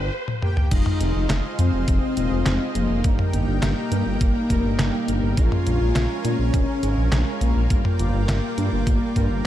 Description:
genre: synthwave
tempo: 103 BPM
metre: 4/4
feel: straight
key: F minor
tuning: A4 = 440 Hz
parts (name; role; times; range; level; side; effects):
- lush unison pad; sustained chords; 0.0-9.5 s; Bb3 to Ab5; -34 LUFS; equal; chorus, sidechain pumping
- wide detuned saw bass; bass; 0.0-9.4 s; Eb1 to Bb2; -22 LUFS; equal; chorus, sidechain pumping
- detuned 8-bit digital drum machine; drums; 0.3-9.3 s; crash cymbal, handclaps, hi-hat, snare drum, toms; -25 LUFS; equal; studio reverb
- analog synth brass; stabs; 0.4-9.5 s; G3 to G5; -32 LUFS; right 3 dB; chorus
- soft octave-layered synth lead; melody; 0.7-9.5 s; Bb3 to F4; -27 LUFS; left 2 dB; chorus, tape echo
- string machine, violins; second line; 0.7-9.5 s; Bb3 to F4; -31 LUFS; equal; ensemble chorus
- electronic kick drum; drums; 0.7-9.3 s; none; -22 LUFS; equal; studio reverb
room: digital ambience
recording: dark, warm production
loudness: -19 LUFS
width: side -12 dB against mid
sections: 0.7-9.5 A section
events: drum fill 0.3-0.7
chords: 0.0 Gm7; 0.7 Fm7; 3.0 Eb/G; 5.4 Bbm7; 7.7 Gm7

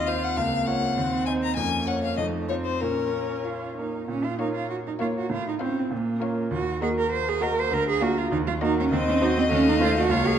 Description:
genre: quick classical-period movement for piano quintet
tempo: 100 BPM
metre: 2/4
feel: rubato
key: Bb minor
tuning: A4 = 437 Hz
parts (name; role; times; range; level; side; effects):
- clear violin; melody; 0.0-10.4 s; Bb4 to Bb5; -29 LUFS; left 7 dB; none
- rich cello; second line; 0.0-10.4 s; Bb3 to C5; -26 LUFS; right 4 dB; none
- bright concert grand piano; accompaniment; 0.0-10.4 s; Db2 to Db5; -28 LUFS; equal; none
- rich viola; accompaniment; 0.0-10.4 s; A3 to F4; -30 LUFS; right 2 dB; none
- clear violin; second line; 4.4-10.4 s; C5 to Eb5; -32 LUFS; left 5 dB; none
room: wet recital hall reverb, RT60 1.3 s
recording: dark, warm production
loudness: -22 LUFS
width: side -9 dB against mid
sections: 0.0-4.1 A section; 4.1-10.4 B section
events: none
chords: 0.4 Bbm/Db; 1.0 Cdim/Eb; 1.6 Bbm/F; 2.2 F7; 2.8 Bbm; 5.3 F/A; 5.9 Bbm; 6.5 Ebm; 7.7 Bb/D; 8.3 Ebm; 8.9 Cdim/Eb; 9.5 F7/Eb

